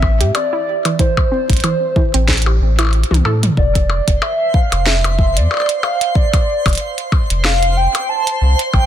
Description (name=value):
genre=IDM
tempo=93 BPM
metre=4/4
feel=swing 56% on 16ths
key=F major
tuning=A4 = 440 Hz
part: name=warbly nostalgic lead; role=melody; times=0.0-8.9 s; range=C5 to A5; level=-19 LUFS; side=right 1 dB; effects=analog chorus, digital delay
part: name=warm sub bass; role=bass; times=0.0-8.9 s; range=F1 to A2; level=-15 LUFS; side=equal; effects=tube saturation
part: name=electronic kick drum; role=drums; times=0.0-8.9 s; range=none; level=-15 LUFS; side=equal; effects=none
part: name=glitchy drum kit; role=drums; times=0.0-8.9 s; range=hi-hat, percussion blips, snare drum, toms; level=-20 LUFS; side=left 1 dB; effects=none
part: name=warbly dusty pluck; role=arpeggios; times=0.2-3.4 s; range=E3 to A4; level=-22 LUFS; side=right 3 dB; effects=chorus, tape echo
part: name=twinkling granular texture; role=texture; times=4.2-8.9 s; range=C5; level=-25 LUFS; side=right 1 dB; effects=built-in reverb
room=light reverb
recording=dense, heavily limited modern master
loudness=-13 LUFS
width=side -10 dB against mid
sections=0.0-3.6 A section; 3.6-8.9 B section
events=drum fill 3.1-3.6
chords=0.0 Am; 3.6 F5